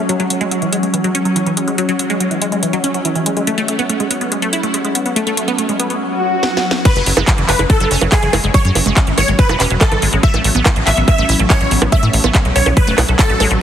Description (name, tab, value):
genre	psychedelic trance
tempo	142 BPM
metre	4/4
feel	straight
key	F# minor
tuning	A4 = 440 Hz
part	evolving wavetable pad	sustained chords	0.0-13.6 s	F#3 to C#4	-21 LUFS	equal	ensemble chorus, built-in reverb, phaser, sidechain pumping
part	wide unison pluck	riff	0.1-13.5 s	E3 to A4	-19 LUFS	equal	auto-pan, sidechain pumping, dub echo
part	drum and bass drum kit	drums	0.1-13.6 s	bongos, crash cymbal, handclaps, hi-hat, snare drum	-18 LUFS	right 1 dB	none
part	swell	sound effects	6.1-6.9 s	none	-19 LUFS	left 2 dB	none
part	supersaw stab	melody	6.9-13.4 s	G#4 to E5	-19 LUFS	right 1 dB	phaser, sidechain pumping, dub echo
part	electronic kick drum	drums	6.9-13.3 s	none	-13 LUFS	equal	none
part	tight sequencer bass	bass	7.0-13.6 s	E1 to A2	-16 LUFS	equal	none
room	moderate lush hall reverb, RT60 2.4 s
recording	heavily compressed radio sound, multiband compression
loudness	-12 LUFS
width	side -9 dB against mid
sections	0.0-6.9 A section; 6.9-13.6 B section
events	filter sweep on ambient pad 0.0-6.9; swell 6.1-6.9; drum fill 6.4-6.9; drop 6.9-13.6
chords	0.1 F#5; 3.5 N.C.; 6.9 F#5; 10.2 A5